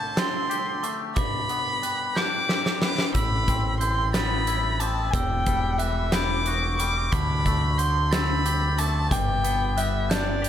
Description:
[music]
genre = post-rock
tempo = 60 BPM (dotted quarters)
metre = 6/8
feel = straight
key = unclear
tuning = A4 = 441 Hz
[part]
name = dark violin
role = melody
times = 0.0-10.5 s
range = D5 to D6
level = -27 LUFS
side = equal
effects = digital delay
[part]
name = glockenspiel with brass mallets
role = arpeggios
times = 0.0-10.5 s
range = D6 to A6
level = -34 LUFS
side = right 5 dB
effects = digital delay
[part]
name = twangy electric guitar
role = arpeggios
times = 0.0-10.5 s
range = E2 to G4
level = -31 LUFS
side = left 5 dB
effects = lush chorus, digital delay
[part]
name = huge arena drum kit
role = drums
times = 0.2-10.5 s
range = hi-hat, kick drum, snare drum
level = -28 LUFS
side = equal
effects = none
[part]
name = growling fingered electric bass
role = bass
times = 3.1-10.5 s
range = E1 to D2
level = -26 LUFS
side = equal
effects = overdrive
[sound]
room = light reverb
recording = none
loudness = -22 LUFS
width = side -10 dB against mid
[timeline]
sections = 0.0-10.5 A section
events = drum fill 2.2-3.2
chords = 0.0 D7sus4; 1.2 G; 3.2 Amadd9; 5.1 Emadd9; 7.1 D7sus4; 9.1 G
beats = 0.18 | 1.17 2.17 | 3.16 4.15 | 5.14 6.14 | 7.13 8.12 | 9.12 10.11

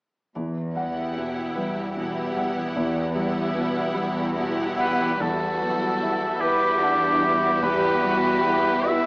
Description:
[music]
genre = cinematic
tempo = 50 BPM (dotted quarters)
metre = 6/8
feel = rubato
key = E minor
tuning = A4 = 440 Hz
[part]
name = rich symphonic cello section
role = bass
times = 0.3-9.1 s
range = E2 to B4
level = -30 LUFS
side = equal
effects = none
[part]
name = warm grand piano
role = accompaniment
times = 0.4-9.1 s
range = E2 to F#5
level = -29 LUFS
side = equal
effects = none
[part]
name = concert harp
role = arpeggios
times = 0.4-9.1 s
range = E3 to B5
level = -36 LUFS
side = equal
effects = none
[part]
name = rich studio violin section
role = second line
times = 0.8-9.1 s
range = E4 to F#5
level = -31 LUFS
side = equal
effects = none
[part]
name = rich symphonic viola section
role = accompaniment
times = 0.8-9.1 s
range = G3 to E4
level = -29 LUFS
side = equal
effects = none
[part]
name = warm symphonic violin section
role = melody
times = 4.8-9.1 s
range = E4 to B4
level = -32 LUFS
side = equal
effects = none
[part]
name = warm oboe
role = second line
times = 4.8-9.1 s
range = G4 to E5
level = -22 LUFS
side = equal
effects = none
[part]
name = dark French horn section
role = sustained chords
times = 5.2-9.1 s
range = E3 to B3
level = -32 LUFS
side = equal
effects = none
[part]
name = rich symphonic double bass section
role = bass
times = 5.2-9.1 s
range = E2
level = -33 LUFS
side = equal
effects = none
[sound]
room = wet scoring stage reverb, RT60 1.8 s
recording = small speaker sound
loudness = -21 LUFS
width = side -36 dB against mid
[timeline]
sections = 0.3-5.2 A section; 5.2-9.1 B section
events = none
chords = 0.3 Emadd9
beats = | 0.35 1.55 | 2.75 3.94 | 5.20 6.42 | 7.62 8.87

